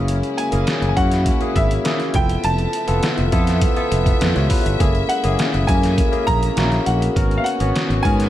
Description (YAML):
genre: polished 1980s jazz-funk pop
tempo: 102 BPM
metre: 4/4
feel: straight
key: unclear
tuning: A4 = 440 Hz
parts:
  - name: barky tine electric piano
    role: accompaniment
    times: 0.0-8.3 s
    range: A#3 to C#5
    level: -22 LUFS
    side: left 1 dB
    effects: overdrive, analog chorus
  - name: rich studio string section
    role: sustained chords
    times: 0.0-8.3 s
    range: C#3 to E5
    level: -29 LUFS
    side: left 2 dB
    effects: none
  - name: fretless electric bass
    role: bass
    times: 0.0-8.3 s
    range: E#1 to G#2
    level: -20 LUFS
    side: equal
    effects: none
  - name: trip hop sampler-style drum kit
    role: drums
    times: 0.1-8.3 s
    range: hi-hat, kick drum, snare drum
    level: -21 LUFS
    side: equal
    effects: gated reverb
  - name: bright grand piano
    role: melody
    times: 0.4-8.3 s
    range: E5 to A#5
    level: -24 LUFS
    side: equal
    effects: ping-pong delay
room: little or no reverb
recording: none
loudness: -16 LUFS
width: side -13 dB against mid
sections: 0.0-8.3 A section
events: none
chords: 0.0 F#9; 2.1 C#7alt/E#; 4.8 F#9; 7.2 G#m11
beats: | 0.08 0.67 1.26 1.85 | 2.44 3.03 3.62 4.21 | 4.80 5.39 5.98 6.57 | 7.16 7.75